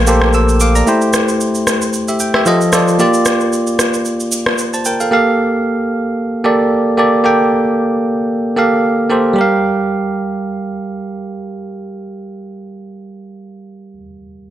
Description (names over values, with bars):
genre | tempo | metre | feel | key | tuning
amapiano | 113 BPM | 4/4 | swing 55% on 16ths | G dorian | A4 = 440 Hz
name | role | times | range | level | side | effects
bell-like tine electric piano | accompaniment | 0.0-14.5 s | F3 to E6 | -14 LUFS | right 1 dB | none
punchy sub bass | bass | 0.0-0.8 s | Bb1 | -13 LUFS | left 1 dB | none
electronic shaker and rim click | drums | 0.1-5.1 s | none | -17 LUFS | equal | none
room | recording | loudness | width
light reverb, digital ambience | none | -12 LUFS | side -12 dB against mid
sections
0.0-9.4 A section; 9.4-13.6 B section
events
break 0.0-0.9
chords
0.0 Gm7/Bb; 0.9 Am7; 2.5 F7; 3.0 Bb6; 9.4 Gm7